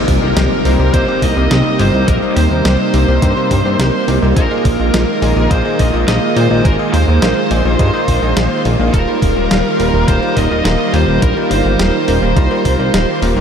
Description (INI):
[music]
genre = synthwave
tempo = 105 BPM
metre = 4/4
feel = straight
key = C minor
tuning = A4 = 440 Hz
[part]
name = high-gain lead guitar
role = melody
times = 0.0-13.2 s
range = Bb4 to Eb5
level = -19 LUFS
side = right 2 dB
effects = distortion, ping-pong delay
[part]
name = lush unison pad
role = sustained chords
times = 0.0-13.4 s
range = C3 to F4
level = -17 LUFS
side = right 1 dB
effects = chorus, sidechain pumping
[part]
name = bright electric grand piano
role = stabs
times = 0.0-13.4 s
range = Ab2 to Eb5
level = -20 LUFS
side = left 2 dB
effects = ping-pong delay
[part]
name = impact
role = sound effects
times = 0.0-2.1 s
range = none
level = -29 LUFS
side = equal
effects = none
[part]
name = chorused synth bass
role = bass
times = 0.1-13.4 s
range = Eb1 to Bb2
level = -15 LUFS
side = equal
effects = none
[part]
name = clean 12-bit digital drum machine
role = drums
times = 0.1-13.3 s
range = hi-hat, snare drum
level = -22 LUFS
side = equal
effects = none
[part]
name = electronic kick drum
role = drums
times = 0.1-12.8 s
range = none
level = -16 LUFS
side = equal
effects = overdrive
[sound]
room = moderate huge ambient reverb, RT60 8.1 s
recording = dreamy mix soaked in reverb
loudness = -11 LUFS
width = side -7 dB against mid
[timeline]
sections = 0.0-13.4 A section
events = impact 0.0-2.1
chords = 0.0 Cm7; 4.4 Bb7sus4; 8.9 Ebadd9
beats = 0.37 0.94 1.51 | 2.08 2.65 3.22 3.79 | 4.37 4.94 5.51 6.08 | 6.65 7.22 7.79 8.37 | 8.94 9.51 10.08 10.65 | 11.22 11.79 12.37 12.94